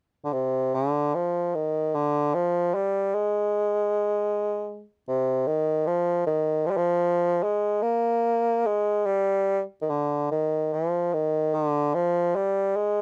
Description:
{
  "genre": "celtic folk",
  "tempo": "48-52 BPM (dotted quarters)",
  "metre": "6/8",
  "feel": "rubato",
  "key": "unclear",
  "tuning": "A4 = 441 Hz",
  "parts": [
    { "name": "warm bassoon", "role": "solo", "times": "0.2-13.0 s", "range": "C3 to Bb3", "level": "-25 LUFS", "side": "equal", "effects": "none" }
  ],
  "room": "little or no reverb",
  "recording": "dry, close 1970s-style studio recording",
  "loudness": "-25 LUFS",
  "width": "mono",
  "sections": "0.7-13.0 A section",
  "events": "none",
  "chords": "none"
}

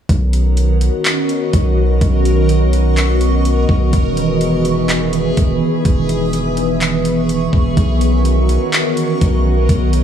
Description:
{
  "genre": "hip hop, atmospheric cloud-rap",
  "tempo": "125 BPM",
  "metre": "4/4",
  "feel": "half-time",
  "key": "B major",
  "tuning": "A4 = 440 Hz",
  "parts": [
    { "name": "glassy FM pad", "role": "sustained chords", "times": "0.1-10.0 s", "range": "D#3 to B4", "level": "-17 LUFS", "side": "equal", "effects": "ensemble chorus, built-in reverb, sidechain pumping" },
    { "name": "long sustained 808-style bass", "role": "bass", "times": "0.1-10.0 s", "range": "E1 to B1", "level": "-16 LUFS", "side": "equal", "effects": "none" },
    { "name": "smooth R&B drum kit", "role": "drums", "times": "0.1-10.0 s", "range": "handclaps, hi-hat, kick drum", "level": "-18 LUFS", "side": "equal", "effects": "none" },
    { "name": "backwards swelling texture", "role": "texture", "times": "1.0-10.0 s", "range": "G#4 to D#6", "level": "-24 LUFS", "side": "right 2 dB", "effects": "built-in reverb" }
  ],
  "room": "light reverb, digital ambience",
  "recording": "studio reverb",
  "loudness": "-12 LUFS",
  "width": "side -9 dB against mid",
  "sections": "0.1-10.0 A section",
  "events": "none",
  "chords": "0.1 Bmaj9; 3.9 Emaj7; 7.8 Bmaj9"
}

